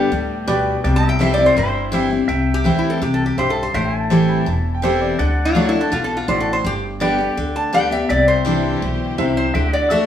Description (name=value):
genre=honky-tonk and classic country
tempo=165 BPM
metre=4/4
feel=straight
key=C major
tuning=A4 = 441 Hz
part: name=picked steel-string acoustic guitar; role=accompaniment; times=0.0-10.1 s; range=E2 to G4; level=-20 LUFS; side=left 2 dB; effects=none
part: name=pedal steel guitar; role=sustained chords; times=0.0-10.1 s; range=D5 to A5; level=-28 LUFS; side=left 1 dB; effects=none
part: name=warm studio string section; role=sustained chords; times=0.0-2.3, 8.1-10.1 s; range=D3 to C5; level=-31 LUFS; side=equal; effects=none
part: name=upright bass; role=bass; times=0.0-10.1 s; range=E1 to D2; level=-23 LUFS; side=equal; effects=none
part: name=clear grand piano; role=accompaniment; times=0.5-10.1 s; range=E4 to B5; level=-24 LUFS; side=right 1 dB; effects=none
part: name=lap resonator guitar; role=melody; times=1.0-10.1 s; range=E4 to A5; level=-19 LUFS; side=equal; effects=none
room=wet stone room reverb, RT60 1.1 s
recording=band playing live in one room, studio reverb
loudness=-15 LUFS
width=side -10 dB against mid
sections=0.0-2.3 A section; 2.3-10.1 A section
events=resonator guitar played with a steel bar solo 0.0-2.3, 2.3-10.1; grand piano fill 4.1-5.2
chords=0.0 G; 0.8 C; 3.7 Am7; 5.2 Dadd9; 6.6 G; 8.1 Cadd9; 9.5 D